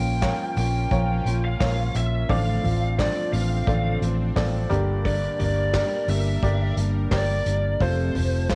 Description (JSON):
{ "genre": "piano-driven pop", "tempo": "87 BPM", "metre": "4/4", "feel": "straight", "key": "unclear", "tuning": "A4 = 440 Hz", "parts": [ { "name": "lead guitar through a small cranked amp", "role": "melody", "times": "0.0-8.6 s", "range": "C5 to G5", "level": "-31 LUFS", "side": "equal", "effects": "overdrive, cassette tape" }, { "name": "warm upright piano", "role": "accompaniment", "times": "0.0-8.6 s", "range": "G2 to D5", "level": "-33 LUFS", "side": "equal", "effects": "cassette tape" }, { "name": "sweeping resonant pad", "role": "sustained chords", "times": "0.0-8.6 s", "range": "F3 to Bb4", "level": "-40 LUFS", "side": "equal", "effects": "none" }, { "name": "picked steel-string acoustic guitar", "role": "riff", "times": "0.0-8.6 s", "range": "F2 to A4", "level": "-34 LUFS", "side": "equal", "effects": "cassette tape" }, { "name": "vintage muted fingered electric bass", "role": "bass", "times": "0.0-8.6 s", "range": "F1 to Bb1", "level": "-26 LUFS", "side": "equal", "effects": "none" }, { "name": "unplugged drum kit", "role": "drums", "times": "0.2-8.6 s", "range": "handclaps, hi-hat, kick drum, snare drum, toms", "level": "-32 LUFS", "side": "equal", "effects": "cassette tape" } ], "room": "light reverb, studio ambience", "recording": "home recording on cassette", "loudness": "-23 LUFS", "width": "mono", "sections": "0.0-8.6 A section", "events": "none", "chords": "0.0 Bbm; 2.3 Dm7/A; 4.7 Gm; 7.8 F", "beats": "0.23 0.92 1.60 | 2.29 2.98 3.67 4.36 | 5.05 5.74 6.43 7.12 | 7.81 8.50" }